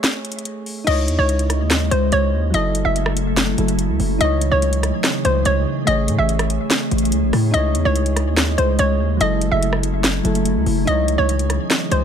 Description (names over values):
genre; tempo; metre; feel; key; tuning
hip hop, trap; 144 BPM; 4/4; half-time; C# minor; A4 = 436 Hz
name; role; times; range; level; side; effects
hollow square pluck; melody; 0.0-12.0 s; B#4 to E5; -22 LUFS; equal; chorus, ping-pong delay
soft electric-piano-like synth keys; accompaniment; 0.0-12.0 s; F#3 to C#5; -26 LUFS; right 3 dB; chorus
trap drum kit; drums; 0.0-12.0 s; crash cymbal, hi-hat, rim click, snare drum; -22 LUFS; equal; none
glassy FM pad; sustained chords; 1.4-12.0 s; C#3 to D#5; -23 LUFS; left 1 dB; ensemble chorus, built-in reverb
distorted 808-style bass; bass; 0.9-12.0 s; F#1 to A2; -20 LUFS; equal; distortion
room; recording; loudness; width
little or no reverb; none; -16 LUFS; side -8 dB against mid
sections
0.9-12.0 A section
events
break 0.0-0.9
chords
0.0 Amaj7; 0.9 C#madd9; 2.5 F#m7; 4.2 C#madd9; 5.9 Amaj7; 7.5 C#madd9; 9.2 F#m7; 10.9 C#madd9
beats
0.04 0.46 | 0.87 1.29 1.71 2.12 | 2.54 2.96 3.37 3.79 | 4.21 4.62 5.04 5.46 | 5.87 6.29 6.71 7.12 | 7.54 7.96 8.37 8.79 | 9.21 9.62 10.04 10.46 | 10.87 11.29 11.71